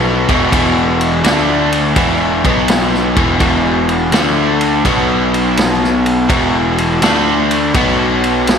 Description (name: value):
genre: blues rock power trio and southern rock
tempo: 83 BPM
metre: 4/4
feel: swing 67% on 8ths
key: unclear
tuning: A4 = 441 Hz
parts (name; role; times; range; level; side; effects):
- overdriven electric guitar; riff; 0.0-8.6 s; E2 to D4; -13 LUFS; left 1 dB; slapback echo
- fuzz picked electric bass; bass; 0.0-8.6 s; E1 to D2; -19 LUFS; equal; overdrive
- vintage drum kit; drums; 0.3-8.6 s; kick drum, ride cymbal, snare drum; -17 LUFS; equal; none
room: moderate concert hall reverb, RT60 2.5 s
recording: big arena sound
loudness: -11 LUFS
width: side -7 dB against mid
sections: 0.0-8.6 A section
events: none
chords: 0.2 E5; 1.2 D5; 2.0 E5; 2.3 B5; 4.1 D5; 4.9 B5; 6.3 E5; 7.0 D5; 7.8 B5